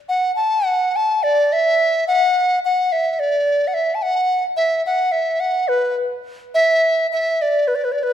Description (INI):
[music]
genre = chinese traditional, Chinese chamber ensemble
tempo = 107 BPM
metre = 4/4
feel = uneven beats, rubato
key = unclear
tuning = A4 = 436 Hz
[part]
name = bright reedy large dizi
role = solo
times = 0.1-8.1 s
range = B4 to A5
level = -16 LUFS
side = equal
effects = none
[sound]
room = wet scoring stage reverb, RT60 1.8 s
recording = dark, warm production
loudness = -16 LUFS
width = side -9 dB against mid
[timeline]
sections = 0.1-8.1 A section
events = none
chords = none